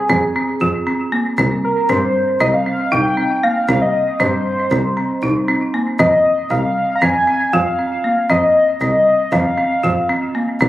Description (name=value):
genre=progressive instrumental, band music in an uneven meter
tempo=234 BPM (eighths)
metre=9/8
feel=straight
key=F minor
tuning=A4 = 440 Hz
part: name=pulse-width lead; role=melody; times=0.0-10.3 s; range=Ab4 to Bb5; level=-17 LUFS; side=left 1 dB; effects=chorus, plate reverb, tape echo
part: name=folk marimba with hard mallets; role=arpeggios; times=0.1-10.7 s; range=Bb3 to F4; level=-19 LUFS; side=right 1 dB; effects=plate reverb, tape echo
part: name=clear double bass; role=bass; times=0.1-10.7 s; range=C2 to G2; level=-20 LUFS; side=equal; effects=none
room=moderate studio ambience, RT60 0.5 s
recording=recorded on a phone in the room, club reverb, compression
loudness=-14 LUFS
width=side -14 dB against mid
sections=0.0-10.7 A section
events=none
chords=0.0 Fm; 1.4 N.C.; 6.0 F7(no3)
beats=0.10 0.36 0.61 0.87 1.13 | 1.38 1.64 1.90 2.15 2.41 2.66 2.92 3.18 3.43 | 3.69 3.95 4.20 4.46 4.71 4.97 5.23 5.48 5.74 | 6.00 6.25 6.51 6.76 7.02 7.28 7.53 7.79 8.05 | 8.30 8.56 8.81 9.07 9.33 9.58 9.84 10.10 10.35 | 10.61